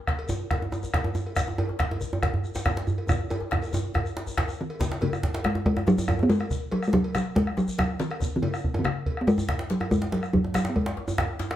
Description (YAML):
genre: west african traditional, West African drum ensemble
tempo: 140 BPM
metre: 4/4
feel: straight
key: unclear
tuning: A4 = 440 Hz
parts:
  - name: bombo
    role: percussion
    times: 0.1-11.6 s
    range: none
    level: -29 LUFS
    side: equal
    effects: none
  - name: djembe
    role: percussion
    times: 0.1-11.5 s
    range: none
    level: -39 LUFS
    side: left 4 dB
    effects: none
  - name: cowbell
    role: percussion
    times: 0.2-11.6 s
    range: none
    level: -39 LUFS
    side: left 3 dB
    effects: none
  - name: djembe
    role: percussion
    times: 0.3-11.6 s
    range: none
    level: -30 LUFS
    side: right 2 dB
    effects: none
  - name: shekere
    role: percussion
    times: 0.3-11.5 s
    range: none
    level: -40 LUFS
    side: left 2 dB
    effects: none
  - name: talking drum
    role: melody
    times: 4.6-11.2 s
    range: C#3 to B3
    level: -24 LUFS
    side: equal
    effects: none
room: moderate studio reverb, RT60 0.7 s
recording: band playing live in one room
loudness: -24 LUFS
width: side -12 dB against mid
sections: 0.0-4.8 A section; 4.8-11.6 B section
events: drum fill 3.1-4.8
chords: none